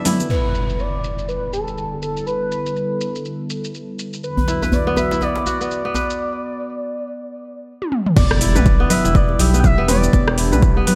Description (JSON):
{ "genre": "afro house", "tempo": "122 BPM", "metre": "4/4", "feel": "swing 59% on 16ths", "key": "E minor", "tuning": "A4 = 440 Hz", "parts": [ { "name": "warm analog pad", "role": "sustained chords", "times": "0.0-11.0 s", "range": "E2 to B4", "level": "-29 LUFS", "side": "equal", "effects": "chorus, sidechain pumping" }, { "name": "kora", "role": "arpeggios", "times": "0.0-11.0 s", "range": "B3 to E5", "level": "-26 LUFS", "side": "equal", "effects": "sidechain pumping, delay" }, { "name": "deep house drum kit", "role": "drums", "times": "0.1-11.0 s", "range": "crash cymbal, hi-hat, rim click, shaker, toms", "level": "-25 LUFS", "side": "equal", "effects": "overdrive, low-pass filter on hats, studio reverb, low-pass filter on toms, low-pass filter on perc, low-pass filter on snare, low-pass filter on cymbals" }, { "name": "congas", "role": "percussion", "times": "0.1-0.3, 8.2-11.0 s", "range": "none", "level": "-26 LUFS", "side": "equal", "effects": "none" }, { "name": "expressive synth lead", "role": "melody", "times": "0.3-10.3 s", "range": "A4 to G5", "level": "-27 LUFS", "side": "equal", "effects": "lush chorus, delay" }, { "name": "impact", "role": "sound effects", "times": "0.3-2.3, 8.2-10.1 s", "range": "none", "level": "-27 LUFS", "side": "equal", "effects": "none" }, { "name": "djembe", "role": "percussion", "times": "4.4-6.1 s", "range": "none", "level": "-25 LUFS", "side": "equal", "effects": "none" }, { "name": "round analog bass", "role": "bass", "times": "8.2-10.8 s", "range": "E1 to B1", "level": "-21 LUFS", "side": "equal", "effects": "sidechain pumping" }, { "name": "electronic kick drum", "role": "drums", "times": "8.2-10.7 s", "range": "none", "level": "-18 LUFS", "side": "equal", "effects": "overdrive, studio reverb" } ], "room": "light reverb", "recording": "bright 1980s-style digital production", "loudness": "-19 LUFS", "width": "mono", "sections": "0.3-8.2 A section; 8.2-11.0 B section", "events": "break 0.0-0.3, 6.2-8.2; impact 0.3-2.3, 8.2-10.1; drum fill 7.8-8.2; drop 8.2-11.0", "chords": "0.3 Em7; 4.2 Bm/E; 8.2 Em7" }